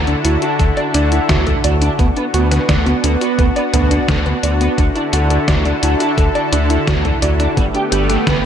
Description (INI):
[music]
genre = synthwave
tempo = 86 BPM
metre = 4/4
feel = straight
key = D major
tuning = A4 = 440 Hz
[part]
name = lush unison pad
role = sustained chords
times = 0.0-8.5 s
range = D3 to A4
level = -18 LUFS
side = equal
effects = chorus, vintage 12-bit sampler grit, sidechain pumping
[part]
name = raw garage guitar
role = riff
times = 0.0-8.4 s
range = B2 to G4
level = -23 LUFS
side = right 4 dB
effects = overdrive, ensemble chorus, ping-pong delay
[part]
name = round analog bass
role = bass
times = 0.0-8.5 s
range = G1 to D2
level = -17 LUFS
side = equal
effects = none
[part]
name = warbly dusty pluck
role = arpeggios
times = 0.1-8.4 s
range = B3 to D5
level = -22 LUFS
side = right 2 dB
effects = chorus, cassette tape, ping-pong delay
[part]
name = detuned 8-bit digital drum machine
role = drums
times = 0.1-8.4 s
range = hi-hat, snare drum, toms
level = -20 LUFS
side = equal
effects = gated reverb
[part]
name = electronic kick drum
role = drums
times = 0.6-8.4 s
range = none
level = -18 LUFS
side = equal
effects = none
[sound]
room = light reverb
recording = none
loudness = -13 LUFS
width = side -9 dB against mid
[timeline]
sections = 0.0-8.5 A section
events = none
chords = 0.0 Dadd9; 2.0 Bm/D; 4.8 Dadd9; 7.6 Gadd9